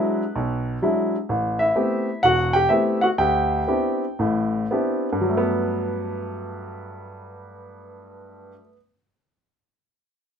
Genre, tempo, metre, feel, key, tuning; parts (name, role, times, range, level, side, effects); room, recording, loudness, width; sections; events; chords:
solo jazz; 110-129 BPM; 4/4; swing 66% on 8ths; G major; A4 = 437 Hz
warm grand piano; solo; 0.0-8.8 s; E1 to G5; -20 LUFS; equal
moderate club reverb, RT60 0.6 s; minimal, uncompressed stereo recording; -20 LUFS; side -7 dB against mid
0.0-5.2 A section; 5.2-9.6 B section
slowing down 1.3-5.2
0.0 E9; 1.3 Am9; 3.2 D13sus4; 5.2 Gmaj9